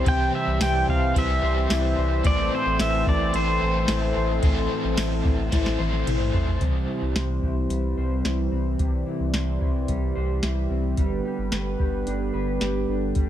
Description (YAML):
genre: dream pop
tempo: 110 BPM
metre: 4/4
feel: straight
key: C major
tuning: A4 = 438 Hz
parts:
  - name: pedal steel guitar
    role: melody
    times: 0.0-6.0 s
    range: C5 to G5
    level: -26 LUFS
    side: equal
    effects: digital delay
  - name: overdriven electric guitar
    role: accompaniment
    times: 0.0-7.1 s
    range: A2 to C5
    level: -32 LUFS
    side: left 1 dB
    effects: tremolo, lush chorus
  - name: warm analog pad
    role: sustained chords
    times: 0.0-13.3 s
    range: D3 to D5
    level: -29 LUFS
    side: right 2 dB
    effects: chorus
  - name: electric guitar at the edge of break-up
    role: arpeggios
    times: 0.0-13.3 s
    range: A2 to C5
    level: -30 LUFS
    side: left 3 dB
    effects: lush chorus, digital delay
  - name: warm sub bass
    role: bass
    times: 0.0-13.3 s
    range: G1 to C2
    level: -26 LUFS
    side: equal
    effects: none
  - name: soft vintage rhythm box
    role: drums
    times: 0.1-13.3 s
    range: hi-hat, kick drum, ride cymbal, snare drum, tambourine, toms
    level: -25 LUFS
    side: equal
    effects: none
room: light reverb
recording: none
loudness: -21 LUFS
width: side -11 dB against mid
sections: 0.0-6.6 A section; 6.6-13.3 B section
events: drum fill 5.5-6.6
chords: 0.0 C; 2.2 Am; 6.6 C; 11.0 G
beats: | 0.07 0.61 1.16 1.70 | 2.25 2.79 3.34 3.88 | 4.43 4.97 5.52 6.07 | 6.61 7.16 7.70 8.25 | 8.79 9.34 9.88 10.43 | 10.97 11.52 12.06 12.61 | 13.16